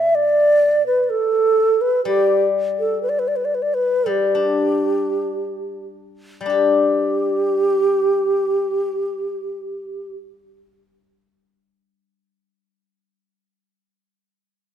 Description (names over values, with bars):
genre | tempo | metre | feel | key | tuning
chinese traditional, Chinese chamber ensemble | 43-63 BPM | 2/4 | rubato | G gong mode | A4 = 441 Hz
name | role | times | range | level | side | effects
low xiao | melody | 0.0-10.2 s | G4 to E5 | -18 LUFS | right 1 dB | none
steel-string zither | accompaniment | 0.0-12.5 s | B2 to G4 | -20 LUFS | left 6 dB | none
room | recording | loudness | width
moderate scoring stage reverb, RT60 1.6 s | none | -16 LUFS | side -9 dB against mid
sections
0.0-6.5 A section; 6.5-12.0 B section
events
slowing down 2.0-6.5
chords
none